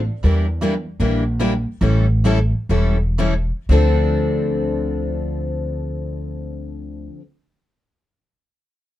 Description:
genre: acoustic string swing (jazz manouche)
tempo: 111-159 BPM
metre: 4/4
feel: swing 63% on 8ths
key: D minor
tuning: A4 = 436 Hz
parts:
  - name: upright bass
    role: bass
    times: 0.0-7.1 s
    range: E1 to E2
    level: -19 LUFS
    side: equal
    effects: none
  - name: picked steel-string acoustic guitar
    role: accompaniment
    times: 0.2-7.2 s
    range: D3 to A4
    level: -24 LUFS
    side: left 8 dB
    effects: none
  - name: picked steel-string acoustic guitar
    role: accompaniment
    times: 0.2-7.2 s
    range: D3 to Bb4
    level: -26 LUFS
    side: right 4 dB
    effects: none
room: little or no reverb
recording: dark, warm production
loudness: -17 LUFS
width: side -14 dB against mid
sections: 0.2-3.7 A section; 3.7-8.0 B section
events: slowing down 0.2-3.7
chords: 0.2 Em7b5; 1.8 A7; 3.7 Dm7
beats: | 0.23 0.61 1.00 1.40 | 1.81 2.24 2.69 3.17 | 3.69 4.23 4.77 5.31 | 5.85 6.39 6.93

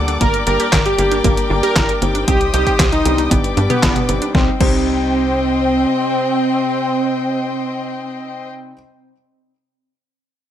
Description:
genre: italo disco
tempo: 116 BPM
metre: 4/4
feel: straight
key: C minor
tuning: A4 = 442 Hz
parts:
  - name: dark chamber string section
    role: sustained chords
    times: 0.0-8.5 s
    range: C4 to Eb6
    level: -23 LUFS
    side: left 3 dB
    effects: none
  - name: dark concert grand piano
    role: stabs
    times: 0.0-8.7 s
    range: G3 to G4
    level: -25 LUFS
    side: left 4 dB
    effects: digital delay
  - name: tight sequencer bass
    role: bass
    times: 0.0-5.9 s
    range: G1 to G2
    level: -21 LUFS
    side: equal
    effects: none
  - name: wide unison pluck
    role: arpeggios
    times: 0.1-4.8 s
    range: Bb3 to C5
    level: -24 LUFS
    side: right 4 dB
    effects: digital delay
  - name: detuned 8-bit digital drum machine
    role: drums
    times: 0.1-4.8 s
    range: crash cymbal, handclaps, hi-hat, snare drum, toms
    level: -20 LUFS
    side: left 1 dB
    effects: none
  - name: wide unison lead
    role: melody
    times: 0.2-8.7 s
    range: B3 to Bb4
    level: -18 LUFS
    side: right 1 dB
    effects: digital delay
  - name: electronic kick drum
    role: drums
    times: 0.2-4.8 s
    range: none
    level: -19 LUFS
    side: equal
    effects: none
room: light reverb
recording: none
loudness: -14 LUFS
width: side -10 dB against mid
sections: 0.0-4.3 A section; 4.3-8.5 B section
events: band accent 3.8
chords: 0.2 Gm; 2.3 Cm; 3.3 G; 4.3 Cm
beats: | 0.21 0.73 1.24 1.76 | 2.28 2.80 3.31 3.83 | 4.35 4.87 5.38 5.90 | 6.42 6.93 7.45 7.97

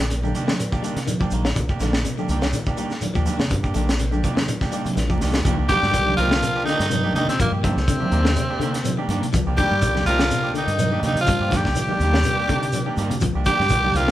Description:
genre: afrobeat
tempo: 124 BPM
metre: 4/4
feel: swing 54% on 16ths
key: C minor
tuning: A4 = 440 Hz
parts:
  - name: clean electric guitar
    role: arpeggios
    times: 0.0-14.1 s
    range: Bb2 to G3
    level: -29 LUFS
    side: left 5 dB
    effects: none
  - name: electric guitar at the edge of break-up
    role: stabs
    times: 0.0-14.1 s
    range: Eb3 to G4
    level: -29 LUFS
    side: right 3 dB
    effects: none
  - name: deep dub fingered electric bass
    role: bass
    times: 0.0-14.1 s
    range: Bb1 to C3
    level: -24 LUFS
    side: equal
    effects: none
  - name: shekere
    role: percussion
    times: 0.0-14.1 s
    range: none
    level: -33 LUFS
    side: right 1 dB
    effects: none
  - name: crunchy breakbeat drum kit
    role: drums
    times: 0.1-14.1 s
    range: hi-hat, kick drum, snare drum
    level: -25 LUFS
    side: equal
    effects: none
  - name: congas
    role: percussion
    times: 0.1-14.1 s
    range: none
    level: -29 LUFS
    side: right 2 dB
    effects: none
  - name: raspy tenor saxophone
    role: melody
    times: 5.7-14.1 s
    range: Bb3 to G4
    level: -22 LUFS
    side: equal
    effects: none
  - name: clear trombone section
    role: second line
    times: 5.7-14.1 s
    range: Bb2 to G3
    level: -31 LUFS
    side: left 2 dB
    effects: none
  - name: warm alto saxophone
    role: second line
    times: 5.7-14.1 s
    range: Bb3 to Bb4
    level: -32 LUFS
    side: right 2 dB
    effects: none
room: moderate large studio reverb, RT60 1.3 s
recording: band playing live in one room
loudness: -18 LUFS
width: side -14 dB against mid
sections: 0.0-5.5 A section; 5.5-14.1 B section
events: drum fill 4.8-5.5, 12.7-13.2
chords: 0.0 Cm9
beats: 0.10 0.59 1.08 | 1.56 2.05 2.54 3.02 | 3.51 3.99 4.48 4.97 | 5.45 5.94 6.42 6.91 | 7.39 7.88 8.37 8.85 | 9.34 9.82 10.30 10.79 | 11.28 11.76 12.25 12.73 | 13.22 13.70

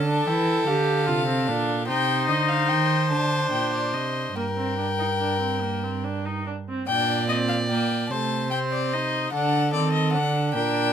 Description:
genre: classical, baroque-style fugue for string quartet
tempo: 49 BPM (dotted quarters)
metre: 6/8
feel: straight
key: G minor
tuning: A4 = 441 Hz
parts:
  - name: warm violin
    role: melody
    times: 0.0-10.9 s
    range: D5 to A5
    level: -27 LUFS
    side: left 6 dB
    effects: none
  - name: warm violin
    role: second line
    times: 0.0-10.9 s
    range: A4 to D5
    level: -28 LUFS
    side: left 1 dB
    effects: none
  - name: rich viola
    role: accompaniment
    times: 0.0-10.9 s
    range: A3 to G4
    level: -28 LUFS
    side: right 2 dB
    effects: none
  - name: dark cello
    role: bass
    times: 0.0-10.9 s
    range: G2 to E3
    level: -27 LUFS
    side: right 3 dB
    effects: none
room: light reverb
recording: close, detailed microphones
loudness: -21 LUFS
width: side -8 dB against mid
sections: 0.0-6.9 A section; 6.9-10.9 B section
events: none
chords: 0.0 A7(no3); 0.7 Dm; 1.9 Cmadd9; 3.1 D5; 4.4 Gm; 6.9 Gm/Bb; 8.1 Adim/C; 9.3 D7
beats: 0.67 | 1.88 3.10 | 4.35 5.62 | 6.88 8.11 | 9.33 10.54

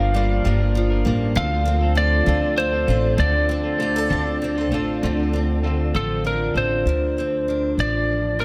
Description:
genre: six-eight pop ballad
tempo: 66 BPM (dotted quarters)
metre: 6/8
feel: straight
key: D minor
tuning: A4 = 440 Hz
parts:
  - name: lightly driven lead guitar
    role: melody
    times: 0.0-8.4 s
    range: A4 to F5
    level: -26 LUFS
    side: equal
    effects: tape echo
  - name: picked steel-string acoustic guitar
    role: accompaniment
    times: 0.0-8.4 s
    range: G2 to A4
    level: -27 LUFS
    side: equal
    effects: double-tracked, tape echo
  - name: twelve-string electric guitar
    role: arpeggios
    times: 0.0-6.9 s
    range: D3 to Bb4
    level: -30 LUFS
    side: equal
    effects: none
  - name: upright bass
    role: bass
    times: 0.0-8.4 s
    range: G1 to D2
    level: -24 LUFS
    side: equal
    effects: none
room: moderate plate reverb, RT60 2.9 s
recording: echo-heavy mix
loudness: -21 LUFS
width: mono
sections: 0.0-5.0 A section; 5.0-6.9 B section; 6.9-8.4 C section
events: none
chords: 0.0 Gm7; 1.4 Dm7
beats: 0.45 | 1.35 2.26 | 3.18 4.10 | 5.02 5.94 | 6.85 7.77

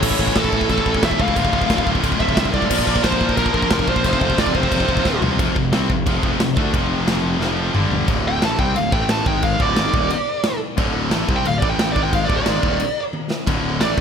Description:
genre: heavy metal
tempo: 178 BPM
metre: 4/4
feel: straight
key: D minor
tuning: A4 = 440 Hz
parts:
  - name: high-gain lead guitar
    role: melody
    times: 0.0-5.2, 8.3-14.0 s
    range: A4 to A5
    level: -22 LUFS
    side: right 1 dB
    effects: distortion, digital delay
  - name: rich symphonic string section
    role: sustained chords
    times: 0.0-5.4 s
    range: D3 to D5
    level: -33 LUFS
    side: right 2 dB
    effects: none
  - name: heavy high-gain guitar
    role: riff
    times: 0.0-14.0 s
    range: D2 to Bb4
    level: -25 LUFS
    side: right 12 dB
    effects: distortion
  - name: high-gain distorted guitar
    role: riff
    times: 0.0-8.1 s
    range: D2 to D4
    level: -26 LUFS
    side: left 1 dB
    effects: distortion
  - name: scooped high-gain guitar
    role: riff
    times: 0.0-14.0 s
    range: D2 to D4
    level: -24 LUFS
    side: left 14 dB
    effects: distortion
  - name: fuzz fingered electric bass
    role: bass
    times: 0.0-14.0 s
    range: D1 to Bb2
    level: -24 LUFS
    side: equal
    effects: overdrive
  - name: big rock drum kit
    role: drums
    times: 0.0-14.0 s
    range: china cymbal, crash cymbal, kick drum, snare drum, toms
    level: -21 LUFS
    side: equal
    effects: none
room: little or no reverb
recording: none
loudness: -16 LUFS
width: side -7 dB against mid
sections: 0.0-5.4 A section; 5.4-8.1 B section; 8.1-14.0 C section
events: drum fill 5.1-5.4, 7.4-8.1, 13.1-13.5; lead electric guitar solo 8.1-14.0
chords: 0.0 A; 1.4 Dm; 2.7 Bb; 4.0 F; 5.4 F5; 7.8 G5; 8.1 D5; 8.9 A5; 9.3 G#5; 9.6 D5; 11.6 A5; 12.0 G#5; 12.3 D5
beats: | 0.03 0.36 0.70 1.03 | 1.37 1.70 2.04 2.37 | 2.71 3.04 3.38 3.71 | 4.05 4.38 4.72 5.06 | 5.39 5.73 6.07 6.40 | 6.74 7.08 7.41 7.75 | 8.09 8.42 8.76 9.10 | 9.44 9.77 10.11 10.45 | 10.78 11.12 11.46 11.79 | 12.13 12.46 12.80 13.14 | 13.47 13.81

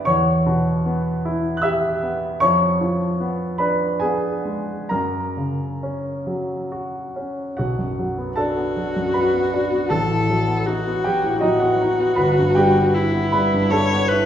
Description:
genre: classical, romantic duo for viola and grand piano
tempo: 65-80 BPM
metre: 3/4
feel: rubato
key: B minor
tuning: A4 = 440 Hz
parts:
  - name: clear concert grand piano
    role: accompaniment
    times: 0.0-14.3 s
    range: G1 to F#6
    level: -19 LUFS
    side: equal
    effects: none
  - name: clear viola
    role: melody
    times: 8.4-14.3 s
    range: E4 to C#5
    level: -20 LUFS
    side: left 2 dB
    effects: none
room: wet recital hall reverb, RT60 1.8 s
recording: heard from further back in the room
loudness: -18 LUFS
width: side -9 dB against mid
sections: 0.0-7.6 A section; 7.6-14.3 B section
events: none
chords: 0.1 C#m7b5/E; 2.4 Fdim7; 4.9 F#; 7.6 Bm; 9.9 B7/A; 12.2 Em/G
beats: | 0.08 0.86 1.65 | 2.43 3.21 4.03 | 4.92 5.83 6.72 | 7.58 8.37 9.15 | 9.91 10.67 11.43 | 12.18 12.94 13.71

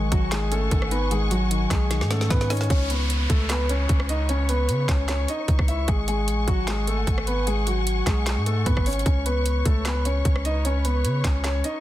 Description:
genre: hip hop, trap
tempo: 151 BPM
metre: 4/4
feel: half-time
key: unclear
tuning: A4 = 440 Hz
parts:
  - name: warm concert grand piano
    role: melody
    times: 0.0-11.8 s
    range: F#3 to E5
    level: -27 LUFS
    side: left 1 dB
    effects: none
  - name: soft round pluck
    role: accompaniment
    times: 0.0-2.7 s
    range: D#3 to D#4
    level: -30 LUFS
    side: left 2 dB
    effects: chorus
  - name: dark symphonic string section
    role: sustained chords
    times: 0.0-11.8 s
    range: B4 to C#6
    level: -33 LUFS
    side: left 3 dB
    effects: none
  - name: long sustained 808-style bass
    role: bass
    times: 0.0-11.6 s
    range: G#1 to C#3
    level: -24 LUFS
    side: equal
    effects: none
  - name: trap drum kit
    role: drums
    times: 0.1-11.7 s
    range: handclaps, hi-hat, kick drum, rim click, snare drum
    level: -24 LUFS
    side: equal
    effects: none
  - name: downlifter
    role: sound effects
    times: 2.7-5.9 s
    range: none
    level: -34 LUFS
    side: right 1 dB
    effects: none
room: little or no reverb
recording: dense, heavily limited modern master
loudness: -20 LUFS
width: side -14 dB against mid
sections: 0.0-2.7 A section; 2.7-11.8 B section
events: drum fill 1.9-2.7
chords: 0.0 G#7sus4; 2.7 C#7(no3); 5.9 G#7sus4; 9.1 C#7(no3)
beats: 0.32 0.71 | 1.11 1.51 1.91 2.30 | 2.70 3.10 3.50 3.89 | 4.29 4.69 5.08 5.48 | 5.88 6.28 6.67 7.07 | 7.47 7.87 8.26 8.66 | 9.06 9.46 9.85 10.25 | 10.65 11.05 11.44

